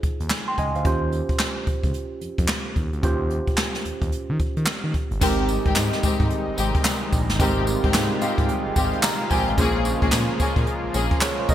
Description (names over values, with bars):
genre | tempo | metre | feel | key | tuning
R&B, new jack swing | 110 BPM | 4/4 | swing 62% on 16ths | unclear | A4 = 440 Hz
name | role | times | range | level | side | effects
tine electric piano | accompaniment | 0.0-11.5 s | C4 to C6 | -28 LUFS | right 4 dB | lush chorus
smooth gliding synth bass | bass | 0.0-11.5 s | G1 to Eb3 | -27 LUFS | equal | none
jazz brush drum kit | drums | 0.0-11.5 s | crash cymbal, handclaps, hi-hat, kick drum, snare drum, tambourine | -23 LUFS | equal | gated reverb
lush unison pad | sustained chords | 5.2-11.5 s | C3 to F4 | -28 LUFS | left 1 dB | chorus
warm studio string section | stabs | 5.2-11.1 s | Ab3 to Ab4 | -26 LUFS | left 4 dB | none
group handclap | percussion | 5.8-11.4 s | none | barely audible | none | none
room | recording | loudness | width
light reverb, small room ambience | bright 1980s-style digital production | -20 LUFS | side -11 dB against mid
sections
0.0-5.2 A section; 5.2-11.5 B section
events
tine electric piano fill 7.9-9.6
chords
0.0 Dbmaj7; 0.9 Eb13; 5.2 Abmaj7; 9.6 Bbm7